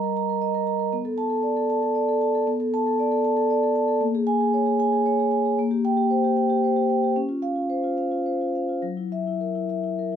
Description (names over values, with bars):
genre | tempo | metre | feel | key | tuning
classical, contemporary piece for solo vibraphone | 69-80 BPM (dotted quarters) | 6/8 | rubato | unclear | A4 = 439 Hz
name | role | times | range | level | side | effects
vibraphone with soft mallets | solo | 0.0-10.2 s | Gb3 to Bb5 | -21 LUFS | equal | none
room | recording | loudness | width
light reverb | minimal, uncompressed stereo recording | -21 LUFS | side -8 dB against mid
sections
0.0-10.2 A section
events
none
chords
0.0 Gm; 0.9 Bm7; 4.0 Bbm7; 5.6 Gmadd11/Bb; 7.1 Dbmaj7; 8.8 Gb7